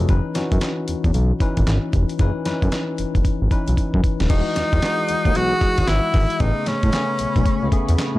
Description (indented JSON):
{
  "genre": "R&B, new jack swing",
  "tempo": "114 BPM",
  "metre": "4/4",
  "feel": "swing 63% on 16ths",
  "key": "unclear",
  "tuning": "A4 = 437 Hz",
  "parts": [
    { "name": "bell-like tine electric piano", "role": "accompaniment", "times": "0.0-8.2 s", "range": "C#3 to D#5", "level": "-25 LUFS", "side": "left 3 dB", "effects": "auto-pan" },
    { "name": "smooth synth bass", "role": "bass", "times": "0.0-8.2 s", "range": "D#1 to A2", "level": "-20 LUFS", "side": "equal", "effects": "none" },
    { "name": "dusty soul sampler-style drum kit", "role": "drums", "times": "0.1-8.1 s", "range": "crash cymbal, handclaps, hi-hat, kick drum, snare drum", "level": "-21 LUFS", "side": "equal", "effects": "none" },
    { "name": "bright tenor saxophone", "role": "melody", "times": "4.3-7.7 s", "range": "C#4 to F#4", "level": "-22 LUFS", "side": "equal", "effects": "ping-pong delay" },
    { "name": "warm analog pad", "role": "sustained chords", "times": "4.3-8.2 s", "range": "A3 to D#6", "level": "-30 LUFS", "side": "left 2 dB", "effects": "chorus" }
  ],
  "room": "little or no reverb",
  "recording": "dark, warm production, lossy compression artefacts",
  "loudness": "-17 LUFS",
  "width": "side -17 dB against mid",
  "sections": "0.0-4.3 A section; 4.3-8.2 B section",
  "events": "drum fill 3.8-4.3",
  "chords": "0.1 C#m9; 4.3 Emaj9; 6.4 Amaj9",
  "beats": "| 0.09 0.61 1.14 1.67 | 2.19 2.72 3.25 3.77 | 4.30 4.83 5.35 5.88 | 6.41 6.93 7.46 7.98"
}